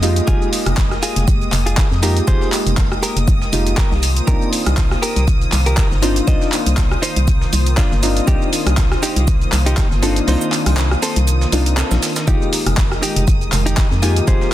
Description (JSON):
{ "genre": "deep house", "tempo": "120 BPM", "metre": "4/4", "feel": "swing 55% on 16ths", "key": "F minor", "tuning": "A4 = 440 Hz", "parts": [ { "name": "warm analog pad", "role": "sustained chords", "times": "0.0-14.5 s", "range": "Eb3 to Eb5", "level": "-26 LUFS", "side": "equal", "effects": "chorus, sidechain pumping" }, { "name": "deep mellow chord stab", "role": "stabs", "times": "0.0-14.5 s", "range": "Ab3 to G4", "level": "-22 LUFS", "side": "left 1 dB", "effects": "chorus, sidechain pumping, ping-pong delay" }, { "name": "organ-like FM bass", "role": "bass", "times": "0.0-14.4 s", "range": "F1 to F2", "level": "-18 LUFS", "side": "equal", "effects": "sidechain pumping" }, { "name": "breakbeat sampler-style drum kit", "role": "drums", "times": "0.0-14.5 s", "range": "hi-hat, shaker, snare drum", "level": "-31 LUFS", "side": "right 3 dB", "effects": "sidechain pumping on perc, high-pass filter on perc, sidechain pumping on hats, high-pass filter on hats, high-pass filter on snare" }, { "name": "deep house drum kit", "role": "drums", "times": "0.0-14.5 s", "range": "handclaps, hi-hat, rim click, shaker", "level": "-22 LUFS", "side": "equal", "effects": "none" }, { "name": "string machine, violins", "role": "texture", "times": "0.0-14.5 s", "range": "Eb6", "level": "-30 LUFS", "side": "equal", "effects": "ensemble chorus" }, { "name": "direct-recorded clean electric guitar", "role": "melody", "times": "0.3-14.5 s", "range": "C4 to Eb5", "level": "-26 LUFS", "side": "equal", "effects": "ping-pong delay" }, { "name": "electronic kick drum", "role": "drums", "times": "0.3-14.4 s", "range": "none", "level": "-16 LUFS", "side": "equal", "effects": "none" } ], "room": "digital ambience", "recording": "dense, heavily limited modern master", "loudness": "-14 LUFS", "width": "side -13 dB against mid", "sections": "0.0-14.5 A section", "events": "kick drops out 10.3-12.3", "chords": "0.0 Fm11; 4.0 Cm11; 12.3 Fm11" }